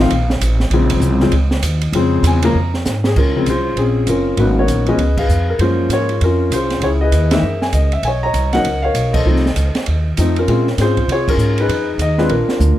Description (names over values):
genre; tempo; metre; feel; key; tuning
jazz piano trio; 197 BPM; 4/4; swing 61% on 8ths; Bb minor; A4 = 439 Hz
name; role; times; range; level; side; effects
warm concert grand piano; melody; 0.0-12.8 s; Db3 to Bb5; -16 LUFS; left 2 dB; none
upright bass; bass; 0.0-12.8 s; Gb1 to C3; -16 LUFS; equal; none
open jazz drum kit; drums; 0.1-12.7 s; crash cymbal, hi-hat, kick drum, ride cymbal, snare drum, toms; -23 LUFS; right 2 dB; none
room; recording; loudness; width
light reverb; none; -13 LUFS; side -13 dB against mid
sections
0.0-3.2 A section; 3.2-12.8 B section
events
grand piano solo 0.0-3.2; drum fill 2.9-3.2, 12.6; band accent 5.1, 7.3, 9.1, 11.2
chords
0.0 F; 0.7 Bbm9; 4.4 Abm11; 5.0 Db7; 5.6 Gbmaj9; 6.8 Dbm9; 7.4 Gbadd9; 8.0 Bmaj9; 9.3 F7; 10.5 Bbm9; 11.7 Fm7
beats
0.12 0.42 | 0.72 1.03 1.33 1.64 | 1.94 2.25 2.55 2.85 | 3.16 3.46 3.77 4.07 | 4.38 4.68 4.99 5.29 | 5.60 5.90 6.21 6.51 | 6.82 7.12 7.43 7.73 | 8.04 8.34 8.65 8.95 | 9.26 9.56 9.87 10.17 | 10.47 10.78 11.09 11.39 | 11.69 12.00 12.30 12.61